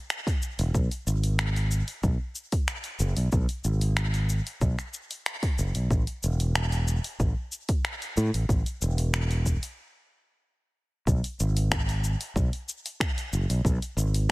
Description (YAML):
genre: sunset chillout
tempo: 93 BPM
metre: 4/4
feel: straight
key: unclear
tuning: A4 = 440 Hz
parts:
  - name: deep house drum kit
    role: drums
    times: 0.1-14.3 s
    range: finger snaps, hi-hat, shaker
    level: -32 LUFS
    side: equal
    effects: none
  - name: electronic kick drum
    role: drums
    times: 0.3-14.3 s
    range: none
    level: -27 LUFS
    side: equal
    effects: overdrive
  - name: fretless electric bass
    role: bass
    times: 0.6-14.3 s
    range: E1 to A2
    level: -25 LUFS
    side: equal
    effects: none
room: digital ambience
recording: none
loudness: -25 LUFS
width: side -21 dB against mid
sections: 0.0-11.1 A section; 11.1-14.3 B section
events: stop 9.8-11.1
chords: none